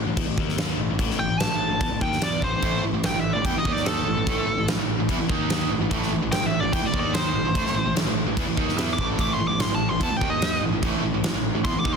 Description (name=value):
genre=hard rock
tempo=146 BPM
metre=4/4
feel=straight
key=unclear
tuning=A4 = 440 Hz
part: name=sludgy distorted guitar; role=riff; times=0.0-12.0 s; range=A2 to E4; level=-30 LUFS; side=left 12 dB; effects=overdrive
part: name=growling picked electric bass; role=bass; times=0.0-12.0 s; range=A1 to E2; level=-30 LUFS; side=equal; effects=overdrive
part: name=huge arena drum kit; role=drums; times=0.2-11.9 s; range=crash cymbal, kick drum, snare drum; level=-26 LUFS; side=equal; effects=none
part: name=nasal lead guitar with a parked wah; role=melody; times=1.2-12.0 s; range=A4 to D6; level=-27 LUFS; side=equal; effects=overdrive, tape echo
part: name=biting overdriven guitar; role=riff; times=2.6-12.0 s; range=A2 to E4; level=-28 LUFS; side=right 14 dB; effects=none
part: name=tight distorted guitar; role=riff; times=2.6-12.0 s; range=A2 to E4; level=-32 LUFS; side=right 2 dB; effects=distortion
room=little or no reverb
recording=dense, heavily limited modern master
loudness=-21 LUFS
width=side -6 dB against mid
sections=0.0-12.0 A section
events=lead electric guitar solo 0.0-12.0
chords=0.4 D#5; 0.8 A5; 3.7 D#5; 4.1 A5; 5.3 D#5; 5.7 A5; 6.9 D#5; 7.3 Am; 10.2 D#5; 10.6 A5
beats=0.17 0.58 | 0.99 1.40 1.81 2.22 | 2.63 3.04 3.45 3.86 | 4.27 4.68 5.09 5.50 | 5.91 6.32 6.73 7.14 | 7.55 7.96 8.37 8.78 | 9.20 9.61 10.02 10.43 | 10.84 11.24 11.65